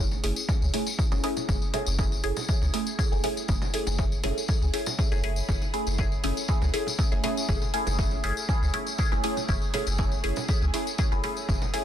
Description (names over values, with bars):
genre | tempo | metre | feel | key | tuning
dub techno | 120 BPM | 4/4 | straight | F# minor | A4 = 441 Hz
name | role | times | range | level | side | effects
filtered dub chord stab | stabs | 0.0-11.8 s | A3 to G#4 | -30 LUFS | equal | phaser, dub echo
warm sub bass | bass | 0.0-11.6 s | F#1 to C#2 | -28 LUFS | equal | sidechain pumping
bongos and congas | percussion | 0.1-11.7 s | none | -40 LUFS | right 4 dB | overdrive, sidechain pumping on perc, small room ambience, dub echo
tambourine | percussion | 0.1-11.7 s | none | -35 LUFS | left 6 dB | none
electronic hi-hat | drums | 0.2-11.8 s | none | -34 LUFS | right 1 dB | overdrive, small room ambience
electronic kick drum | drums | 0.5-11.6 s | none | -27 LUFS | equal | overdrive, small room ambience
room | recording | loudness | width
little or no reverb | dense, heavily limited modern master | -24 LUFS | side -10 dB against mid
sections
0.0-11.8 A section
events
none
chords
0.0 F#m9